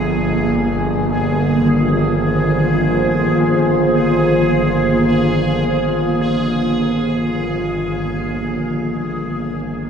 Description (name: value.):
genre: dark ambient drone.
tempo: free time.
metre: none.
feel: none.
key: unclear.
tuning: A4 = 442 Hz.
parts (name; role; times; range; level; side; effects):
deep dark ambient pad; sustained chords; 0.0-9.9 s; Bb3 to Db5; -18 LUFS; right 1 dB; chorus, built-in reverb, shimmer reverb.
quartz singing bowl; arpeggios; 0.0-8.4 s; Eb3 to F3; -23 LUFS; equal; tape echo, shimmer reverb.
bowed-like drone; drone; 0.0-9.9 s; G1; -21 LUFS; equal; built-in reverb.
bubbling stepped-filter texture; texture; 0.0-9.9 s; Ab4; -23 LUFS; left 1 dB; chorus, built-in reverb, shimmer reverb.
room: wet cathedral reverb, RT60 5.4 s.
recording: in a vast, echoing space.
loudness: -15 LUFS.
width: side -7 dB against mid.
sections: 0.0-9.9 A section.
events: fade-out 4.3-9.9.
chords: 0.0 Bbm7.